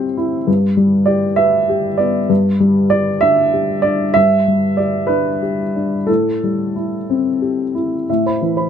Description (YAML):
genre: neoclassical minimalist piano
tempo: 59-66 BPM (dotted quarters)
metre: 6/8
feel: rubato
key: unclear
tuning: A4 = 442 Hz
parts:
  - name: dark upright piano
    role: solo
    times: 0.0-8.7 s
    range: G2 to B5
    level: -14 LUFS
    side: equal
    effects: none
room: little or no reverb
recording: close, detailed microphones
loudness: -14 LUFS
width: side -8 dB against mid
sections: 0.0-8.1 A section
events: none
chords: 0.5 G; 6.1 Am7; 8.1 Amadd9